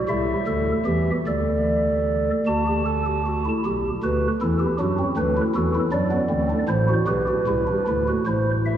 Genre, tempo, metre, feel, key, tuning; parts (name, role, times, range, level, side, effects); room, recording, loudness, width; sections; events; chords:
classical, baroque-style 3-part fugue for pipe organ; 51 BPM (dotted quarters); 6/8; straight; G major; A4 = 442 Hz
chamber organ, stopped flute; solo; 0.0-8.8 s; A1 to A5; -20 LUFS; right 1 dB
wet cathedral reverb, RT60 5.4 s; worn, warbling old tape, cassette tape, warbly pitch drift, small room ambience; -20 LUFS; side -10 dB against mid
0.0-3.7 A section; 3.7-8.3 B section
0.0 Am7; 1.3 D5; 2.5 D; 3.7 G/B; 4.8 D; 5.9 D7; 7.1 G/B; 8.3 Am